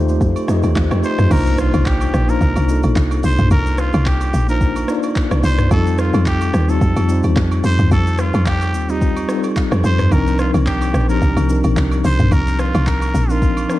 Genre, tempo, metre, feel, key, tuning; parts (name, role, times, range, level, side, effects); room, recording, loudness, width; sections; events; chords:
amapiano; 109 BPM; 4/4; swing 55% on 16ths; C dorian; A4 = 440 Hz
mellow tine electric piano; accompaniment; 0.0-13.8 s; F3 to Eb5; -20 LUFS; left 2 dB; medium stereo tremolo
deep dark ambient pad; sustained chords; 0.2-1.3 s; barely audible
woody log drum bass; bass; 0.0-13.7 s; Bb1 to F2; -16 LUFS; equal
swell and impact; sound effects; 0.1-3.5 s; -28 LUFS; equal
smooth R&B drum kit; drums; 0.1-13.8 s; crash cymbal, handclaps, hi-hat, kick drum, rim click, shaker, toms; -20 LUFS; equal
agogo bells and woodblock; percussion; 0.4-13.7 s; -33 LUFS; right 5 dB
trumpet with straight mute; melody; 1.0-13.8 s; Eb4 to C5; -24 LUFS; equal; tape echo
light reverb; dark, warm production; -14 LUFS; side -16 dB against mid
0.0-1.3 A section; 1.3-13.8 B section
drop 1.3-13.8; impact 1.3-3.5
0.0 F9; 1.3 Cm11; 5.7 F9; 10.1 Cm11